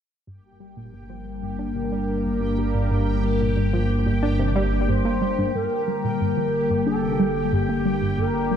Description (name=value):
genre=ambient, sequencer-driven space music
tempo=91 BPM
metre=4/4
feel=straight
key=G minor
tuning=A4 = 440 Hz
part: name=sweeping resonant pad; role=sustained chords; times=0.3-8.6 s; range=D3 to Bb4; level=-25 LUFS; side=left 2 dB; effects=chorus
part: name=tight sequenced synth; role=riff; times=0.3-8.6 s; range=G2 to D4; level=-26 LUFS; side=right 1 dB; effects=chorus, ping-pong delay
part: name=fat analog bass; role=bass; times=0.3-8.6 s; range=G1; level=-27 LUFS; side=right 1 dB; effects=none
part: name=bubbling stepped-filter texture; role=texture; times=0.8-8.6 s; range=G4 to G5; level=-34 LUFS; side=right 1 dB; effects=chorus, built-in reverb
part: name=expressive portamento lead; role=melody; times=4.9-8.6 s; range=G4 to C5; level=-26 LUFS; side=equal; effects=lush chorus, ping-pong delay
room=moderate plate reverb, RT60 3.0 s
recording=dark, warm production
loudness=-20 LUFS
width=side -8 dB against mid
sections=0.3-5.5 A section; 5.5-8.6 B section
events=fade-in on synth arpeggio sound 0.3-5.5; fade-in on analog synth bass 0.3-5.5; fade-in on synth texture 0.3-5.5; filter sweep on synth arpeggio sound 5.5-8.6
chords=0.3 Gm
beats=| 0.27 0.93 1.59 2.25 | 2.91 3.57 4.23 4.89 | 5.55 6.21 6.87 7.53 | 8.19